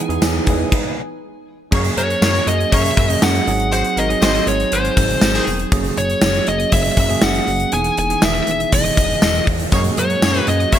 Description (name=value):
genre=1980s-style pop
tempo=120 BPM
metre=4/4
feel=straight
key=F# mixolydian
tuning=A4 = 440 Hz
part: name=bell-like tine electric piano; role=accompaniment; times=0.0-10.8 s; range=D#3 to C#5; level=-22 LUFS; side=right 6 dB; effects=none
part: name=brassy analog pad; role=sustained chords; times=0.0-0.7, 9.7-10.8 s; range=A#2 to F#4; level=-32 LUFS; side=left 1 dB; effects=none
part: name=chorused synth bass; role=bass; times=0.1-10.8 s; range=E1 to F#2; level=-22 LUFS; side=left 1 dB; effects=none
part: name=gated 80s drum kit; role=drums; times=0.1-10.8 s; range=crash cymbal, hi-hat, kick drum, snare drum, tambourine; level=-18 LUFS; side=equal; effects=none
part: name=tambourine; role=percussion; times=0.2-10.3 s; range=none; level=-33 LUFS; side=left 7 dB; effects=none
part: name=warm horn section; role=stabs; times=0.5-5.5, 9.7-10.8 s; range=D#3 to C#5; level=-26 LUFS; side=left 2 dB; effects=digital delay
part: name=fuzz lead guitar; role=melody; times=2.0-10.8 s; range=B#4 to G#5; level=-20 LUFS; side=left 2 dB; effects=distortion
room=moderate lush hall reverb, RT60 2.0 s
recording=bright 1980s-style digital production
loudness=-14 LUFS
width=side -10 dB against mid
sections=0.0-1.7 A section; 1.7-10.8 B section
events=band accent 0.0-1.7; stop 0.7-1.7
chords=0.0 Emaj7; 1.7 F#add9; 3.5 G#7; 5.7 F#add9; 7.7 Emaj7; 9.7 F#add9